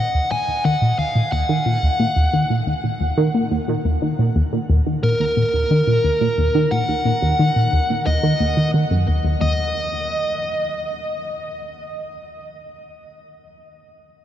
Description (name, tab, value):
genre	ambient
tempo	89 BPM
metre	4/4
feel	straight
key	Eb minor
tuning	A4 = 439 Hz
part	smooth overdriven lead guitar	melody	0.0-12.8 s	Bb4 to Ab5	-22 LUFS	equal	shimmer reverb, tape echo
part	tight sequenced synth	riff	0.0-9.7 s	Eb2 to Eb3	-18 LUFS	equal	chorus, tape echo
room	wet huge ambient reverb, RT60 8.2 s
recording	cassette tape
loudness	-17 LUFS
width	side -11 dB against mid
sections	0.0-9.4 A section; 9.4-12.1 B section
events	filter sweep on synth arpeggio sound 0.0-9.4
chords	0.0 Ebm; 9.4 N.C.